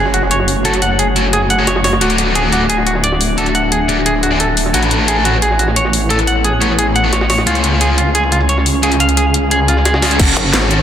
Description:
dark technical drum and bass; 176 BPM; 4/4; straight; F# minor; A4 = 440 Hz
deep dark ambient pad; sustained chords; 0.0-10.8 s; A3 to F#5; -20 LUFS; left 1 dB; chorus, built-in reverb, sidechain pumping
clean electric guitar; arpeggios; 0.0-10.1 s; E#4 to F#5; -16 LUFS; right 1 dB; spring reverb, sidechain pumping, low-pass filter, tape echo
snarling distorted saw bass; bass; 0.0-10.4 s; D1 to C#2; -17 LUFS; equal; distortion, overdrive, sidechain pumping
sub drop; sound effects; 0.0-0.7 s; barely audible
drum and bass drum kit; drums; 0.1-10.8 s; crash cymbal, hi-hat, rim click, snare drum; -18 LUFS; left 2 dB
jungle sampler-style drum kit; drums; 0.1-10.8 s; hi-hat, snare drum; -23 LUFS; equal; high-pass filter on hats, low-pass filter on hats, high-pass filter on snare, low-pass filter on snare
thick fuzz guitar; stabs; 0.6-10.8 s; C#4 to D5; -19 LUFS; left 1 dB; distortion, tape echo
electronic kick drum; drums; 10.2-10.3 s; -12 LUFS; equal; overdrive
metallic wobble bass; bass; 10.4-10.8 s; F#1 to G#1; -15 LUFS; equal; chorus
moderate digital room reverb, RT60 1.1 s, digital ambience; dense, heavily limited modern master; -11 LUFS; side -9 dB against mid
0.0-10.2 A section
impact 0.0-0.7
0.0 F#m; 2.0 D; 4.7 Aadd9; 7.5 C#; 10.2 F#m

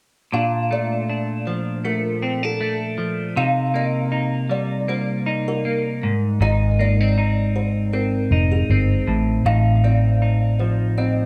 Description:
indie pop; 79 BPM; 4/4; swing 55% on 16ths; Bb major; A4 = 438 Hz
kalimba; second line; 0.3-11.2 s; Ab4 to F5; -29 LUFS; equal; ensemble chorus, tape echo, plate reverb
clean electric guitar; accompaniment; 0.3-11.3 s; Ab2 to Eb4; -22 LUFS; equal; lush chorus, warbly pitch drift
vintage muted picked electric bass; bass; 6.4-11.3 s; F1 to A1; -23 LUFS; equal
moderate studio ambience, RT60 0.5 s; -20 LUFS; mono
0.3-11.3 A section
0.3 Bbmaj7; 3.4 Cm7; 6.0 Abmaj7; 9.1 F7/A

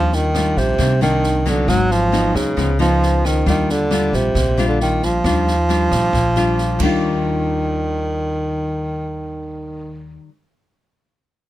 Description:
bossa nova; 135 BPM; 4/4; straight; Eb major; A4 = 437 Hz
breathy tenor saxophone; melody; 0.0-10.2 s; C3 to Gb3; -19 LUFS; right 1 dB
nylon-string guitar; accompaniment; 0.0-10.3 s; Ab2 to F4; -22 LUFS; left 3 dB
upright bass; bass; 0.0-10.2 s; Ab1 to Eb2; -22 LUFS; equal
open jazz drum kit; drums; 0.1-6.9 s; crash cymbal, kick drum, rim click, snare drum; -27 LUFS; right 1 dB
little or no reverb; close, detailed microphones; -15 LUFS; side -14 dB against mid
0.0-7.0 A section; 7.0-10.6 B section
0.0 Ebmaj9; 0.8 Cm9; 1.7 Abm7; 2.6 Db9; 3.5 Ebmaj9

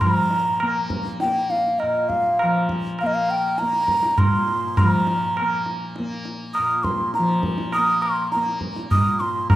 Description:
indian classical, Hindustani; 101 BPM; 4/4; straight; Bb raga durga; A4 = 439 Hz
mellow hollow bansuri; melody; 0.0-9.6 s; Eb5 to Eb6; -21 LUFS; equal
tanpura; drone; 0.0-9.6 s; Bb2 to Bb3; -27 LUFS; left 1 dB
tabla; percussion; 0.0-9.6 s; -23 LUFS; right 1 dB
moderate concert hall reverb, RT60 1.9 s; dark, warm production; -19 LUFS; side -14 dB against mid
0.0-9.5 A section

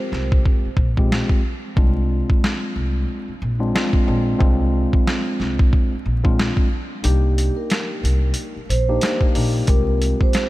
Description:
hip hop, boom-bap hip-hop; 91 BPM; 4/4; swing 60% on 16ths; A4 = 439 Hz
mellow tine electric piano; accompaniment; 0.0-10.5 s; Ab3 to G4; -24 LUFS; left 1 dB
upright bass; bass; 0.1-10.1 s; Bb1 to C2; -20 LUFS; equal
boom bap sampler-style drum kit; drums; 0.1-10.5 s; hi-hat, kick drum, snare drum; -19 LUFS; equal
vibraphone with soft mallets; melody; 7.0-10.5 s; G4 to C5; -27 LUFS; moving between left 2 dB and right 6 dB; auto-pan, diffuse ambient delay
light reverb, small room ambience; vinyl crackle; -17 LUFS; side -17 dB against mid
0.0-10.5 A section
break 0.0-7.0; kick muted 7.0-7.7
0.0 Fmadd9/C; 1.8 Bb7; 7.0 Cm7; 9.7 Fmadd9/C

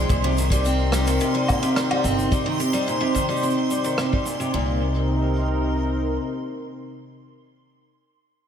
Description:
folktronica; 108 BPM; 4/4; straight; C minor; A4 = 440 Hz
warm analog pad; sustained chords; 0.0-7.5 s; C3 to C5; -26 LUFS; equal; chorus
picked steel-string acoustic guitar; arpeggios; 0.0-4.8 s; Bb2 to C4; -24 LUFS; equal; low-pass filter, diffuse ambient delay
upright bass; bass; 0.0-6.2 s; G1 to C2; -24 LUFS; equal
backwards swelling texture; texture; 0.0-4.5 s; C6; -32 LUFS; right 2 dB; built-in reverb, wide subtle chorus
kick drum; drums; 0.1-4.2 s; -24 LUFS; equal
shaker, rim click and woodblock; drums; 0.1-4.5 s; -30 LUFS; equal
wet lush hall reverb, RT60 1.8 s, small room ambience; dreamy mix soaked in reverb; -20 LUFS; side -8 dB against mid
0.1-4.5 A section; 4.5-6.8 B section
filter sweep on steel-string acoustic guitar 0.1-4.5
0.1 Cm7

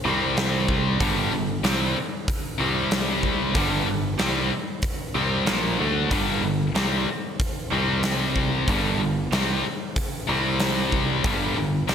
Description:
hard rock; 94 BPM; 4/4; straight; A4 = 442 Hz
tight distorted guitar; riff; 0.0-11.9 s; G2 to D4; -26 LUFS; left 9 dB; distortion
cranked stack guitar; riff; 0.1-11.9 s; G2 to D4; -27 LUFS; right 8 dB; overdrive
picked electric bass; bass; 0.1-11.9 s; G1 to D2; -28 LUFS; equal
huge arena drum kit; drums; 0.4-11.9 s; hi-hat, kick drum, snare drum; -27 LUFS; equal; gated reverb
moderate lush hall reverb, RT60 1.6 s, small room ambience; bright 1980s-style digital production; -21 LUFS; side -8 dB against mid
0.0-11.9 A section
0.0 C5; 1.0 G5; 2.6 C5; 3.6 G5; 7.7 C5; 8.7 G5; 10.3 C5; 11.2 G5

